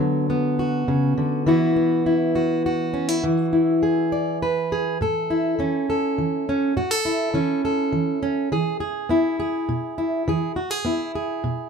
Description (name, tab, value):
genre	folk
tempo	102 BPM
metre	3/4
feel	straight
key	A major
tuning	A4 = 438 Hz
part	fingerpicked plugged-in steel-string acoustic guitar	solo	0.0-11.7 s	A2 to D5	-20 LUFS	equal	none
room	light reverb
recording	none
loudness	-20 LUFS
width	side -6 dB against mid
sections	0.0-5.0 A section; 5.0-11.7 B section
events	none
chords	0.0 D6; 1.5 Eadd9; 5.0 A; 8.5 E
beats	0.28 0.87 | 1.46 2.06 2.65 | 3.23 3.82 4.41 | 5.00 5.59 6.17 | 6.76 7.35 7.93 | 8.52 9.10 9.69 | 10.28 10.86 11.45